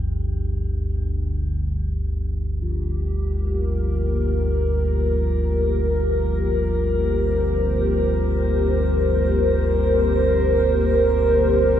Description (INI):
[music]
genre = ambient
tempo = free time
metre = none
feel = none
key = G minor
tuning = A4 = 440 Hz
[part]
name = gamelan-type bossed gongs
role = arpeggios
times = 0.0-0.9 s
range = F3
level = -46 LUFS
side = left 2 dB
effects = tape echo, shimmer reverb
[part]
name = deep rumbling drone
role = drone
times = 0.0-11.8 s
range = G1 to D2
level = -22 LUFS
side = equal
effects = built-in reverb, lush chorus
[part]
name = bronze singing bowl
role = texture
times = 0.0-11.8 s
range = F3 to G4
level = -33 LUFS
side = left 4 dB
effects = shimmer reverb
[part]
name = dark analog pad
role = sustained chords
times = 2.6-11.8 s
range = G4 to C5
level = -20 LUFS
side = equal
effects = chorus, shimmer reverb
[sound]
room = wet cathedral reverb, RT60 5.5 s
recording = none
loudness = -19 LUFS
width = side -10 dB against mid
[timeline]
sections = 0.0-2.6 A section; 2.6-11.8 B section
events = none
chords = 0.0 G5; 2.6 Gm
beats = free time